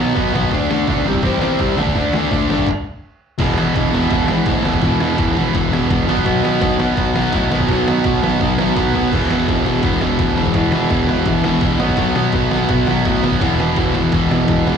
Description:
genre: punk rock.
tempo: 167 BPM.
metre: 4/4.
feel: straight.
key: unclear.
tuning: A4 = 439 Hz.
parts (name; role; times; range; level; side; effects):
fuzz guitar; riff; 0.0-14.8 s; E2 to D4; -21 LUFS; right 2 dB; distortion.
sludgy distorted guitar; riff; 0.0-14.8 s; E2 to D4; -20 LUFS; left 8 dB; overdrive, slapback echo.
tight distorted guitar; riff; 0.0-14.8 s; E2 to D4; -22 LUFS; right 14 dB; distortion.
fuzz picked electric bass; bass; 0.0-14.8 s; E1 to B2; -22 LUFS; right 1 dB; overdrive.
trip hop sampler-style drum kit; drums; 0.2-14.8 s; crash cymbal, handclaps, kick drum, ride cymbal, snare drum, toms; -22 LUFS; equal; none.
room: little or no reverb.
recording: live gig heard through the venue's PA, club reverb.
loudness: -14 LUFS.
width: side -7 dB against mid.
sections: 0.0-3.4 A section; 3.4-14.8 B section.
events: stop 2.7-3.4; drum fill 8.8-9.1, 14.5.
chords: 0.0 B5; 0.5 D5; 1.1 C5; 1.8 D5; 3.4 E5; 6.1 B5; 9.1 E5; 11.8 B5; 13.4 E5.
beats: 0.16 | 0.52 0.88 1.24 1.60 | 1.96 2.32 2.68 3.04 | 3.40 3.76 4.12 4.47 | 4.83 5.19 5.55 5.91 | 6.26 6.62 6.98 7.34 | 7.69 8.05 8.41 8.76 | 9.12 9.48 9.83 10.19 | 10.55 10.91 11.26 11.62 | 11.98 12.34 12.70 13.05 | 13.41 13.77 14.13 14.49.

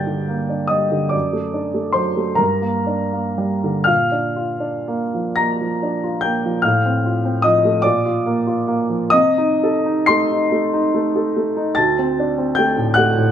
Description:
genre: classical, romantic nocturne for solo piano.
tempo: 38-52 BPM (dotted quarters).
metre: 12/8.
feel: rubato.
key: G minor.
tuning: A4 = 440 Hz.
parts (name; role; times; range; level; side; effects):
warm grand piano; solo; 0.0-13.3 s; D2 to C7; -16 LUFS; equal; none.
room: moderate large studio reverb, RT60 1.0 s.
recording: none.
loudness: -16 LUFS.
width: side -9 dB against mid.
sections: 0.0-13.3 A section.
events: none.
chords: 0.0 Gm; 1.1 D/F#; 2.4 Gm; 3.9 Bb; 6.6 F/A; 7.8 Bb; 9.1 Adim/C; 11.8 D7.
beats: 1.14 2.40 | 3.88 5.36 6.63 7.85 | 9.12 10.51 11.76 12.95.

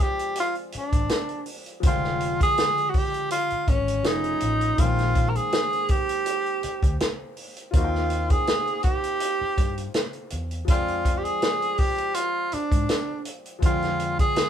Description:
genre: lush 1970s-style soul.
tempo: 81 BPM.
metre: 4/4.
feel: swing 54% on 16ths.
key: F dorian.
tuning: A4 = 440 Hz.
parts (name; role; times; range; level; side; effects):
breathy tenor saxophone; melody; 0.0-14.5 s; Db4 to Bb4; -25 LUFS; right 1 dB; none.
warm concert grand piano; accompaniment; 0.0-14.5 s; D3 to G5; -33 LUFS; left 2 dB; none.
vintage drum kit; drums; 0.0-14.5 s; hi-hat, kick drum, snare drum; -24 LUFS; equal; none.
vintage muted fingered electric bass; bass; 0.7-14.2 s; F1 to Ab2; -28 LUFS; left 1 dB; none.
room: moderate studio ambience, RT60 0.4 s.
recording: band playing live in one room.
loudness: -22 LUFS.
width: side -9 dB against mid.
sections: 0.0-14.5 A section.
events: none.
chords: 0.0 Fm69; 4.1 F7alt; 4.8 Bb13sus4; 7.7 Eb69; 10.7 Fm69.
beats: 0.36 1.10 | 1.84 2.58 3.31 4.05 | 4.79 5.53 6.26 7.00 | 7.74 8.47 9.21 9.95 | 10.68 11.42 12.16 12.89 | 13.63 14.36.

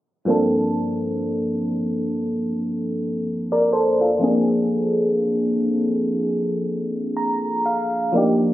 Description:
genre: R&B.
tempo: 61 BPM.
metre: 4/4.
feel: swing 58% on 16ths.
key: G minor.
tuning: A4 = 440 Hz.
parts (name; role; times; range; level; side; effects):
FM electric piano; accompaniment; 0.3-8.5 s; G2 to Bb5; -19 LUFS; equal; chorus, phaser.
room: moderate scoring stage reverb, RT60 1.7 s.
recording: recorded on a phone in the room, studio reverb, low-pass filter.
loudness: -19 LUFS.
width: side -15 dB against mid.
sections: 0.3-8.5 A section.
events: filter sweep 0.3-8.5; FM electric piano fill 6.7-8.1.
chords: 0.3 Gm11; 4.2 Bb9.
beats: | 0.27 1.25 2.24 3.22 | 4.21 5.19 6.17 7.16 | 8.14.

